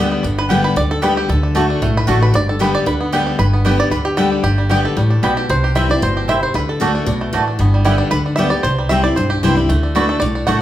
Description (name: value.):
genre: bluegrass.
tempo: 228 BPM.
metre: 4/4.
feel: straight.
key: G major.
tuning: A4 = 440 Hz.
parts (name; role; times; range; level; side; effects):
bluegrass banjo; melody; 0.0-10.6 s; D3 to F#5; -20 LUFS; right 2 dB; none.
picked steel-string acoustic guitar; accompaniment; 0.0-10.6 s; G2 to G4; -17 LUFS; left 2 dB; none.
mandolin; stabs; 0.0-10.6 s; A3 to A5; -21 LUFS; right 2 dB; none.
upright bass; bass; 0.0-10.6 s; G1 to D2; -19 LUFS; equal; none.
room: moderate large studio reverb, RT60 0.9 s.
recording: band playing live in one room.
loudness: -13 LUFS.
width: side -12 dB against mid.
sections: 0.0-3.4 A section; 3.4-10.6 A section.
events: five-string banjo solo 0.0-10.6.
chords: 0.0 G; 1.3 D; 2.3 G; 5.5 C; 6.5 D; 7.6 G; 8.6 C; 9.7 D.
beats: | 0.24 0.50 0.77 1.03 | 1.29 1.55 1.82 2.08 | 2.34 2.60 2.87 3.13 | 3.39 3.65 3.92 4.18 | 4.44 4.71 4.97 5.23 | 5.50 5.76 6.02 6.28 | 6.55 6.81 7.07 7.33 | 7.60 7.86 8.12 8.38 | 8.64 8.91 9.17 9.43 | 9.69 9.96 10.22 10.48.